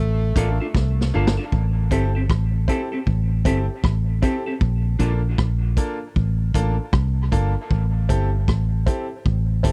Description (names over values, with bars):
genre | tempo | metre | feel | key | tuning
dub reggae | 78 BPM | 4/4 | swing 61% on 16ths | A phrygian | A4 = 440 Hz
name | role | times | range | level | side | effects
clear tenor saxophone | melody | 0.0-1.1 s | A3 | -35 LUFS | equal | dub echo
vintage muted fingered electric bass | bass | 0.0-9.7 s | G1 to C2 | -22 LUFS | equal | transformer saturation
semi-hollow electric guitar | accompaniment | 0.4-5.1 s | C4 to A4 | -31 LUFS | equal | dub echo
bright grand piano | stabs | 0.4-9.7 s | Bb3 to A4 | -32 LUFS | equal | dub echo
vintage drum kit | drums | 0.4-9.7 s | hi-hat, kick drum, rim click, snare drum | -24 LUFS | equal | none
room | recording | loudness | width
little or no reverb | dry, close 1970s-style studio recording | -21 LUFS | mono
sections
0.0-1.5 A section; 1.5-9.7 B section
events
drum fill 0.7-1.5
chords
0.0 Bbmaj7; 1.5 Am7; 4.6 Bbmaj7; 7.7 Am7